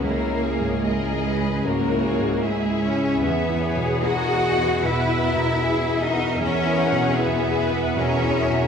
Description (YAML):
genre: cinematic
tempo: 76 BPM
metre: 4/4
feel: rubato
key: unclear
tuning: A4 = 439 Hz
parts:
  - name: rich studio violin section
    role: melody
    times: 0.0-8.7 s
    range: G#4 to F#5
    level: -31 LUFS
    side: left 2 dB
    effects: none
  - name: warm studio violin section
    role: second line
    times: 0.0-8.7 s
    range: F#4 to F#5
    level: -27 LUFS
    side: left 3 dB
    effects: none
  - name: clear studio viola section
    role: accompaniment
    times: 0.0-8.7 s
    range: B3 to B4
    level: -30 LUFS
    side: equal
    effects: none
  - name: warm grand piano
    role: accompaniment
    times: 0.0-8.7 s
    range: C#2 to G#4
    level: -25 LUFS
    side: left 1 dB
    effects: none
  - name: clear studio cello section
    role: bass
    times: 0.0-8.7 s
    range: G#3 to F#4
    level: -25 LUFS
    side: right 1 dB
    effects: none
  - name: clear studio double bass section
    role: bass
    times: 0.0-8.7 s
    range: C#2 to E2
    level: -29 LUFS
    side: right 3 dB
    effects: none
room: wet scoring stage reverb, RT60 2.1 s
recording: heard from further back in the room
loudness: -19 LUFS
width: side -7 dB against mid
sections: 0.0-8.7 A section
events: none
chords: 0.0 C#m; 3.2 E